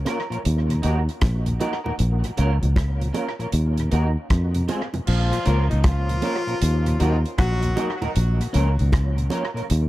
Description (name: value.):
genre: roots reggae.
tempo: 78 BPM.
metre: 4/4.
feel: swing 64% on 16ths.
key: Bb minor.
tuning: A4 = 440 Hz.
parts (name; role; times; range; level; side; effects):
fingered electric bass; bass; 0.0-9.9 s; Bb1 to F2; -20 LUFS; equal; none.
electric guitar at the edge of break-up; accompaniment; 0.1-9.6 s; C4 to Bb4; -30 LUFS; right 2 dB; analog chorus, tape echo.
tonewheel organ; accompaniment; 0.1-9.6 s; Eb2 to Gb4; -30 LUFS; left 1 dB; overdrive, chorus vibrato, slow rotary speaker, tape echo.
damped 70s drum kit; drums; 0.1-9.9 s; crash cymbal, hi-hat, kick drum, rim click; -26 LUFS; equal; tape echo.
bongos; percussion; 0.1-9.5 s; none; -30 LUFS; right 4 dB; none.
warm horn section; second line; 5.1-8.0 s; Eb3 to Gb4; -28 LUFS; left 2 dB; tape echo.
room: little or no reverb.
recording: echo-heavy mix.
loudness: -19 LUFS.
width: side -16 dB against mid.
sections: 0.0-5.1 A section; 5.1-9.9 B section.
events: none.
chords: 0.5 Ebm; 2.0 Bbm; 3.5 Ebm; 4.3 Fm; 5.1 Bbm; 6.6 Ebm; 8.2 Bbm.